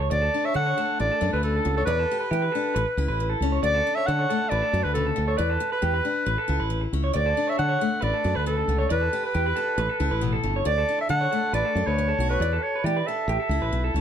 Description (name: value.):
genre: highlife.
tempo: 137 BPM.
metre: 4/4.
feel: straight.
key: D major.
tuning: A4 = 440 Hz.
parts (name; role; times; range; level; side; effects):
picked steel-string acoustic guitar; accompaniment; 0.0-14.0 s; A2 to G4; -32 LUFS; left 9 dB; none.
electric guitar through a small old amp; arpeggios; 0.0-14.0 s; G4 to D5; -29 LUFS; right 3 dB; slapback echo.
fingered electric bass; bass; 0.0-14.0 s; G1 to E3; -26 LUFS; equal; none.
breathy clarinet; melody; 0.1-13.9 s; A4 to F#5; -26 LUFS; equal; plate reverb.
room: light reverb.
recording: none.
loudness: -22 LUFS.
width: side -9 dB against mid.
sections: 0.1-14.0 A section.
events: none.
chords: 0.1 Dmaj7; 1.9 Em7; 2.8 A; 3.6 Dmaj7; 5.4 Em7; 6.3 A; 7.2 Dmaj7; 8.9 Em7; 9.8 A7; 10.7 Dmaj7; 12.4 E7(no3); 13.3 A7.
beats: | 0.11 0.55 0.99 1.43 | 1.87 2.31 2.75 3.19 | 3.63 4.07 4.51 4.95 | 5.39 5.83 6.27 6.71 | 7.15 7.59 8.03 8.47 | 8.90 9.34 9.78 10.22 | 10.66 11.09 11.53 11.97 | 12.41 12.84 13.28 13.72.